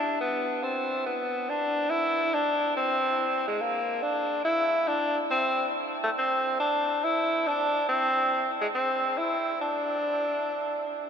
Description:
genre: jazz.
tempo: 140 BPM.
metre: 3/4.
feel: swing 66% on 8ths.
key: unclear.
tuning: A4 = 440 Hz.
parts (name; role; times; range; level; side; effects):
clear tenor saxophone; solo; 0.0-11.1 s; G#3 to E4; -25 LUFS; equal; none.
room: wet huge ambient reverb, RT60 8.1 s.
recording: in a vast, echoing space.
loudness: -24 LUFS.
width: side -7 dB against mid.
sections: 0.0-1.5 A section; 1.5-11.1 B section.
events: none.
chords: none.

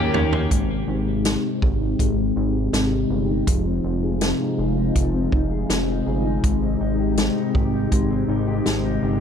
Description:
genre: dream pop.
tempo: 81 BPM.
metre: 4/4.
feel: straight.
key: Ab major.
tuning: A4 = 441 Hz.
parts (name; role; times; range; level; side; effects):
direct-recorded clean electric guitar; accompaniment; 0.0-1.0 s; Eb3 to G4; -32 LUFS; right 5 dB; tremolo, analog chorus.
string machine, full ensemble; sustained chords; 0.0-9.2 s; C3 to G4; -25 LUFS; right 1 dB; ensemble chorus, low-pass filter.
electric guitar at the edge of break-up; arpeggios; 0.0-9.2 s; Eb3 to Ab4; -25 LUFS; left 6 dB; lush chorus, low-pass filter, ping-pong delay.
chorused synth bass; bass; 0.0-9.2 s; F1 to Eb2; -25 LUFS; right 1 dB; none.
vintage drum kit; drums; 0.1-8.8 s; hi-hat, kick drum, snare drum, toms; -23 LUFS; right 1 dB; none.
room: light reverb.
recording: none.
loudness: -19 LUFS.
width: side -7 dB against mid.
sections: 0.5-9.2 A section.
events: drum fill 0.0-0.5; filter sweep 0.5-9.2.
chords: 0.0 Eb7; 0.5 Abmaj7; 3.5 Fm7; 6.4 Abmaj7.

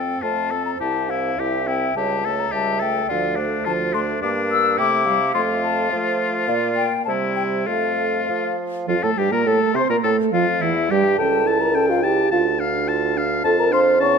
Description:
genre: quick classical-period movement for wind quintet.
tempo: 105 BPM.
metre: 2/4.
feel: rubato.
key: F major.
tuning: A4 = 440 Hz.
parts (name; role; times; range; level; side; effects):
mellow hollow silver concert flute; melody; 0.0-14.2 s; E5 to E6; -24 LUFS; left 10 dB; none.
bright oboe; second line; 0.0-14.2 s; D4 to A5; -24 LUFS; left 5 dB; none.
clear French horn; accompaniment; 0.0-14.2 s; F3 to C#5; -23 LUFS; right 1 dB; none.
warm bassoon; bass; 0.0-14.2 s; C2 to F3; -25 LUFS; right 3 dB; none.
dark clarinet; accompaniment; 0.2-14.2 s; E3 to G5; -26 LUFS; right 9 dB; none.
room: moderate scoring stage reverb, RT60 1.9 s.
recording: none.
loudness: -18 LUFS.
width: side -6 dB against mid.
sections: 0.0-8.9 A section; 8.9-14.2 A section.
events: none.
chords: 0.0 F; 0.8 C; 2.0 A7/C#; 3.1 Dm; 4.2 Gm; 4.8 C; 5.3 F; 6.5 Bb; 7.1 C; 7.7 F; 10.0 Fmaj9; 11.2 A7/C#; 12.3 Dm; 13.4 Dm/F.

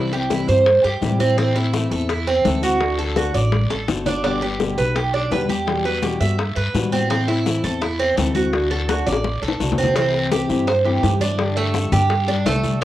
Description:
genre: latin, Cuban son and guajira.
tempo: 168 BPM.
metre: 4/4.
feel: straight.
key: G major.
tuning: A4 = 440 Hz.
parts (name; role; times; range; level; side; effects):
nylon-string guitar; accompaniment; 0.0-12.8 s; B2 to G4; -24 LUFS; left 4 dB; cassette tape.
Cuban tres; arpeggios; 0.0-12.8 s; A3 to E5; -21 LUFS; right 4 dB; cassette tape.
upright bass; bass; 0.0-12.8 s; G1 to A2; -23 LUFS; equal; none.
bongos; percussion; 0.1-12.8 s; none; -26 LUFS; left 5 dB; none.
congas; percussion; 0.1-12.8 s; none; -28 LUFS; left 5 dB; none.
guiro; percussion; 0.3-12.8 s; none; -32 LUFS; left 6 dB; none.
room: wet studio reverb, RT60 0.6 s.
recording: home recording on cassette.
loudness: -17 LUFS.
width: side -13 dB against mid.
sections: 0.0-10.0 A section; 10.0-12.8 B section.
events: drum fill 3.5-4.2, 8.9-10.0.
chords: 0.0 C; 1.4 Am; 2.8 D; 4.2 G; 5.7 Emadd9; 7.1 Am; 8.5 D; 10.0 C6; 11.4 Gsus2.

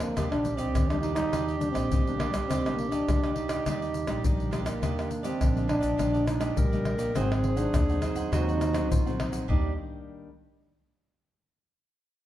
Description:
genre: samba and choro.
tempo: 103 BPM.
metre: 4/4.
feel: straight.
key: Eb major.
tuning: A4 = 440 Hz.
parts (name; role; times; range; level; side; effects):
growling trombone; melody; 0.0-9.8 s; G3 to Eb4; -30 LUFS; right 1 dB; none.
cavaquinho; accompaniment; 0.0-9.7 s; D4 to Ab5; -39 LUFS; right 6 dB; none.
nylon-string guitar; accompaniment; 0.0-10.3 s; F2 to Eb4; -37 LUFS; left 4 dB; none.
upright bass; bass; 0.0-9.8 s; Ab1 to Eb2; -32 LUFS; right 1 dB; none.
tube shaker, surdo, pandeiro and tamborim; percussion; 0.0-9.6 s; none; -29 LUFS; left 1 dB; none.
warm clarinet; second line; 0.2-9.8 s; D4 to Bb4; -36 LUFS; right 3 dB; none.
room: moderate large studio reverb, RT60 1.2 s.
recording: dark, warm production.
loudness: -25 LUFS.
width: side -13 dB against mid.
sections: 0.0-4.8 A section; 4.8-9.5 B section; 9.5-11.8 C section.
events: none.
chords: 0.2 Ebmaj7; 7.2 Ab7; 9.5 Ebmaj7.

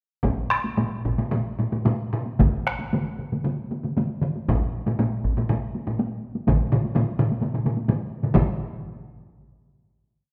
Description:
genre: japanese traditional, taiko drum ensemble.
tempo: 110-142 BPM.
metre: 4/4.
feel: straight.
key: none.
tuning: none.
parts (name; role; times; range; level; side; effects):
taiko ensemble; percussion; 0.2-8.6 s; none; -31 LUFS; equal; none.
taiko ensemble; percussion; 0.2-8.8 s; none; -28 LUFS; equal; none.
taiko ensemble; percussion; 0.2-8.6 s; none; -28 LUFS; equal; none.
taiko ensemble; percussion; 2.4-8.8 s; none; -28 LUFS; equal; none.
room: wet recital hall reverb, RT60 1.7 s.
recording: none.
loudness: -25 LUFS.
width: mono.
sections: 0.2-8.3 A section; 8.3-10.1 final hit.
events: speeding up 0.2-10.1.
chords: none.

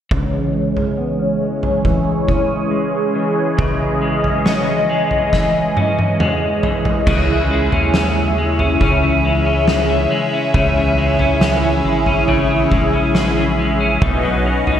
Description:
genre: dream pop.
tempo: 69 BPM.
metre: 4/4.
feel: straight.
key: unclear.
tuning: A4 = 441 Hz.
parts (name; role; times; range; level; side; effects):
phased analog pad; sustained chords; 0.1-14.8 s; E3 to E5; -18 LUFS; equal; phaser, chorus, low-pass filter.
clean electric guitar; arpeggios; 0.1-14.8 s; B2 to D#4; -20 LUFS; left 2 dB; analog chorus, low-pass filter, digital delay.
oversized low-tuned drum kit; drums; 0.1-14.8 s; crash cymbal, kick drum, snare drum, toms; -20 LUFS; equal; gated reverb.
saturated sub bass; bass; 7.1-14.8 s; G#1 to D#2; -21 LUFS; equal; none.
room: wet lush hall reverb, RT60 1.9 s, studio reverb.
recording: bright 1980s-style digital production.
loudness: -14 LUFS.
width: side -9 dB against mid.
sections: 0.1-7.1 A section; 7.1-14.8 B section.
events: filter sweep 0.1-7.1; drum fill 5.3-7.1.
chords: 0.1 C#m; 14.0 Badd9.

